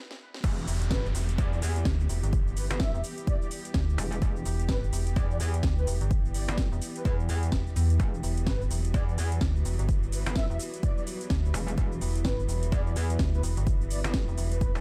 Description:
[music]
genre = bass house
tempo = 127 BPM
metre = 4/4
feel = swing 60% on 16ths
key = E minor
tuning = A4 = 440 Hz
[part]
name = house drum kit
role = drums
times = 0.1-14.8 s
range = cabasa, crash cymbal, hi-hat, snare drum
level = -40 LUFS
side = equal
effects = studio reverb
[part]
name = rich studio string section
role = sustained chords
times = 0.4-14.8 s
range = E3 to G4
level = -44 LUFS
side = equal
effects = sidechain pumping
[part]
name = metallic wobble bass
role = bass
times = 0.4-14.8 s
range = E1 to E2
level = -32 LUFS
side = equal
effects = chorus, sidechain pumping
[part]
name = electronic kick drum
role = drums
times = 0.4-14.7 s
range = none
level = -31 LUFS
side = equal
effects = studio reverb
[part]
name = downlifter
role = sound effects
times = 0.4-4.2 s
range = none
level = -46 LUFS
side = equal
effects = none
[part]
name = deep dark ambient pad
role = texture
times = 2.1-14.8 s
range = E4 to B5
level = -45 LUFS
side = equal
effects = chorus, built-in reverb, sidechain pumping
[part]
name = metallic FM bass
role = bass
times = 0.7-14.7 s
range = E1 to E2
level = -30 LUFS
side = equal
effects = overdrive, sidechain pumping
[part]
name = breathy flute-like synth lead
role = melody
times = 0.9-14.7 s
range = B4 to E5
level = -42 LUFS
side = equal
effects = ensemble chorus, dub echo
[sound]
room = digital ambience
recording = high-pass filter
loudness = -28 LUFS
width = mono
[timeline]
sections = 0.4-14.8 A section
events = break 0.0-0.4; drum fill 0.0-0.4; drop 0.4-14.8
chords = 0.4 Em

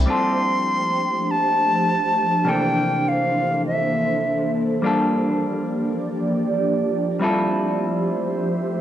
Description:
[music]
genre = chillout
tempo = free time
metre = none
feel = none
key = unclear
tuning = A4 = 439 Hz
[part]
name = semi-hollow electric guitar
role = accompaniment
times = 0.0-8.8 s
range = C3 to A4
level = -25 LUFS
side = left 1 dB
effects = auto-pan, cassette tape, analog delay, plate reverb
[part]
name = ethereal airy pad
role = sustained chords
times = 0.0-8.8 s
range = E3 to E5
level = -23 LUFS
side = right 1 dB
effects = ensemble chorus, built-in reverb, cassette tape
[part]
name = silver concert flute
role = melody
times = 0.1-4.5 s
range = E5 to C6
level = -21 LUFS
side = equal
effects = cassette tape, analog delay, plate reverb
[sound]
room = wet studio reverb, RT60 0.7 s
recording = home recording on cassette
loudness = -19 LUFS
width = side -11 dB against mid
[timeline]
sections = 0.1-8.8 A section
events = none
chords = 0.1 G9sus4; 2.5 C13; 4.8 Gm7; 7.2 Fmaj9

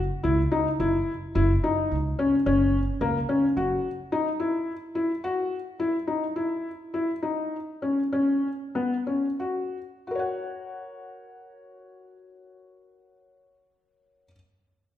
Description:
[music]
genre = contemporary instrumental, contemporary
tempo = 88-109 BPM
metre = 5/4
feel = straight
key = F# mixolydian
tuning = A4 = 441 Hz
[part]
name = upright bass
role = bass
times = 0.0-3.8 s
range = F#1 to C#2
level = -27 LUFS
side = right 1 dB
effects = none
[part]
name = felt-muted upright piano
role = arpeggios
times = 0.2-14.4 s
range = A#3 to F#5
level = -25 LUFS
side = left 2 dB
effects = none
[sound]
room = wet recital hall reverb, RT60 1.5 s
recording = recorded in a church or concert hall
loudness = -24 LUFS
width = side -11 dB against mid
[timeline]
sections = 0.0-10.1 A section; 10.1-13.4 B section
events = slowing down 5.2-10.1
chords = 0.0 F#7(no3); 4.1 Esus2; 10.1 F#

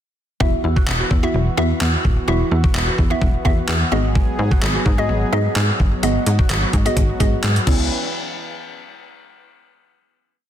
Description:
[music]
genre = dance-pop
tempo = 128 BPM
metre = 4/4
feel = straight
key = unclear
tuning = A4 = 441 Hz
[part]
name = mallet-like synth pluck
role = accompaniment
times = 0.4-7.9 s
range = B3 to E5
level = -24 LUFS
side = right 1 dB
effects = chorus, phaser, sidechain pumping
[part]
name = warm analog pad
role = sustained chords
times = 0.4-7.9 s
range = E3 to B4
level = -27 LUFS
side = equal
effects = chorus, sidechain pumping
[part]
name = mallet-like synth pluck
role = arpeggios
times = 0.4-7.9 s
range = F#3 to F#5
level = -31 LUFS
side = left 2 dB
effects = chorus, sidechain pumping, ping-pong delay
[part]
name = plucky analog bass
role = bass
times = 0.4-7.9 s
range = D#1 to G#2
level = -20 LUFS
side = equal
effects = sidechain pumping
[part]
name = detuned 8-bit digital drum machine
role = drums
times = 0.4-7.8 s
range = crash cymbal, handclaps, hi-hat, kick drum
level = -19 LUFS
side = equal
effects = none
[sound]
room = light reverb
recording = dense, heavily limited modern master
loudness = -16 LUFS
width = side -10 dB against mid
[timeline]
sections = 0.4-7.9 bridge; 7.9-9.8 final hit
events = none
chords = 0.4 Esus2; 3.9 G#m7; 7.7 C#m7; 7.9 N.C.

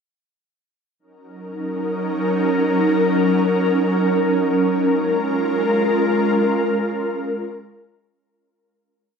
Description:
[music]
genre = hip hop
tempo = free time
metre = none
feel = none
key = unclear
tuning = A4 = 440 Hz
[part]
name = ethereal airy pad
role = solo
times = 1.4-8.1 s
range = Gb3 to Bb4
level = -17 LUFS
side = equal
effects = ensemble chorus, built-in reverb
[sound]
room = moderate lush hall reverb, RT60 2.1 s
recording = none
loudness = -17 LUFS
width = side -6 dB against mid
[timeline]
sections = 1.0-8.2 verse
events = fade-out 6.4-8.2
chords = 1.0 Gb6; 4.6 Db6

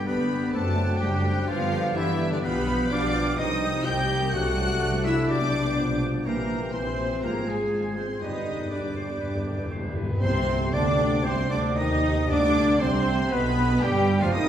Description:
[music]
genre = classical, dramatic, fast romantic movement for symphony orchestra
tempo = 114-128 BPM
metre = 4/4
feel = straight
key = C minor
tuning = A4 = 440 Hz
[part]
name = clear symphonic violin section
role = melody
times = 0.0-14.5 s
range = D5 to G6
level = -33 LUFS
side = left 1 dB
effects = none
[part]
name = clear clarinet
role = second line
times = 0.0-14.5 s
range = D4 to G5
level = -35 LUFS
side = equal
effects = none
[part]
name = clear oboe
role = second line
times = 0.0-14.5 s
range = F4 to F5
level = -37 LUFS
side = right 1 dB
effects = none
[part]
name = flute section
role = second line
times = 0.0-14.5 s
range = F5 to Ab6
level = -37 LUFS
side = left 2 dB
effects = none
[part]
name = warm studio violin section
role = second line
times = 0.0-14.5 s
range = C4 to G5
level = -36 LUFS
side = left 2 dB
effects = none
[part]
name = dark bassoon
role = accompaniment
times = 0.0-14.5 s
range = Eb3 to Eb4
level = -33 LUFS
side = right 2 dB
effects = none
[part]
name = warm symphonic viola section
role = accompaniment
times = 0.0-14.5 s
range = Eb3 to B4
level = -33 LUFS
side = right 2 dB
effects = none
[part]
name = mellow French horn section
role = sustained chords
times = 0.0-14.5 s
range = D3 to G4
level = -31 LUFS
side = left 2 dB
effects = none
[part]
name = concert harp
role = arpeggios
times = 0.0-14.5 s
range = F#2 to Ab5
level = -32 LUFS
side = left 4 dB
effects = none
[part]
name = rich chamber cello section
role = bass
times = 0.0-14.5 s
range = D3 to G4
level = -32 LUFS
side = right 2 dB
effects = none
[part]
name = rich symphonic double bass section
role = bass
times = 0.1-14.5 s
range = F1 to Eb2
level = -29 LUFS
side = right 2 dB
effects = none
[part]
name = timpani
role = percussion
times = 3.4-5.0, 8.2-13.0 s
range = G2 to C3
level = -33 LUFS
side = equal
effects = none
[part]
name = cymbal swell and tam-tam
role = percussion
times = 6.3-12.2 s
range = none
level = -39 LUFS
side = equal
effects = none
[part]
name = bright trombone section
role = sustained chords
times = 10.2-14.5 s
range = F2 to G3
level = -34 LUFS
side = right 2 dB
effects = none
[sound]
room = wet recital hall reverb, RT60 1.7 s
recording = heard from further back in the room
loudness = -22 LUFS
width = side -10 dB against mid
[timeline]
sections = 0.0-10.2 A section; 10.2-14.5 B section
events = timpani fill 8.2-10.2; band accent 10.2-10.7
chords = 0.0 G; 0.5 D7/F#; 1.5 G; 2.4 G7/B; 3.4 Cm; 4.3 D7/C; 5.3 G/B; 6.3 C7/Bb; 7.2 Fm/Ab; 8.2 G; 10.2 Cm; 12.3 G7b9

